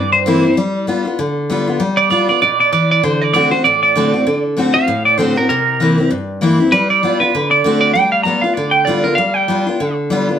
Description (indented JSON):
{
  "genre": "rock",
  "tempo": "195 BPM",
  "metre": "4/4",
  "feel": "swing 58% on 8ths",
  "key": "G mixolydian",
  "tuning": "A4 = 436 Hz",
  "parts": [
    { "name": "clean electric guitar", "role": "melody", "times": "0.0-9.9 s", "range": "Bb4 to Bb5", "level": "-14 LUFS", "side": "right 3 dB", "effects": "phaser" },
    { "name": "picked steel-string acoustic guitar", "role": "accompaniment", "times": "0.0-10.4 s", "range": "G2 to F#4", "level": "-15 LUFS", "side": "left 2 dB", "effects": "none" }
  ],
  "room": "wet studio reverb, RT60 0.7 s",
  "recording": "band playing live in one room",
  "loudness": "-12 LUFS",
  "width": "side -9 dB against mid",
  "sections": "0.0-8.0 A section; 8.0-10.4 B section",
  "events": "clean electric guitar solo 0.0-8.0",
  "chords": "0.0 C7; 0.6 G7; 3.0 D7; 5.5 C7; 6.7 G7; 7.3 D7; 8.0 G7"
}